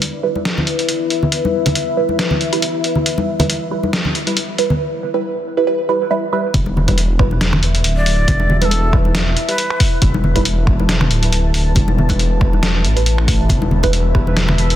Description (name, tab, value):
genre	deep dubstep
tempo	138 BPM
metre	4/4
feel	swing 55% on 16ths, half-time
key	E minor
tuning	A4 = 440 Hz
part	deep dark ambient pad	sustained chords	0.1-14.8 s	E4 to A5	-23 LUFS	left 4 dB	chorus, built-in reverb
part	filtered dub chord stab	stabs	0.0-14.4 s	G3 to B4	-21 LUFS	right 4 dB	phaser, dub echo
part	trip hop sampler-style drum kit	drums	0.0-14.8 s	finger snaps, hi-hat, snare drum	-20 LUFS	equal	small room reverb
part	congas	percussion	0.4-14.6 s	none	-21 LUFS	left 1 dB	dub echo
part	dark detuned saw bass	bass	6.5-14.8 s	D1 to A1	-16 LUFS	equal	none
part	electronic kick drum	drums	6.5-14.2 s	none	-16 LUFS	equal	small room reverb
part	breathy bright shakuhachi	melody	8.0-9.8 s	A4 to D5	-22 LUFS	equal	dub echo
room	light reverb, digital ambience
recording	dense, heavily limited modern master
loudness	-14 LUFS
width	side -12 dB against mid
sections	0.0-6.5 A section; 6.5-14.8 B section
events	build-up 0.0-6.5; drop 6.5-14.8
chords	0.0 Em